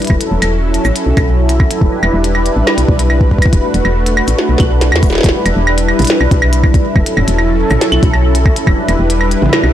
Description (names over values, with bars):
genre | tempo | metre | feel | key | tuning
IDM | 140 BPM | 4/4 | straight | E dorian | A4 = 440 Hz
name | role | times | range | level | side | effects
warm analog pad | sustained chords | 0.0-9.7 s | F#3 to B4 | -15 LUFS | equal | chorus
glitchy drum kit | drums | 0.0-9.7 s | claves, hi-hat, shaker, snare drum, toms | -16 LUFS | right 1 dB | overdrive, studio reverb, tape echo
woody FM bass | bass | 0.1-9.7 s | D1 to E2 | -14 LUFS | equal | tube saturation
electronic kick drum | drums | 0.1-8.8 s | none | -12 LUFS | equal | overdrive, studio reverb
room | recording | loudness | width
digital ambience | blown-out, overdriven recording, overdrive | -10 LUFS | side -11 dB against mid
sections
0.0-5.2 A section; 5.2-9.7 B section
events
drum fill 4.4-5.2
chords
0.1 F#m7/E; 1.8 Em7; 3.5 D6/E; 5.2 Em7; 7.0 F#m7/E; 8.7 Em7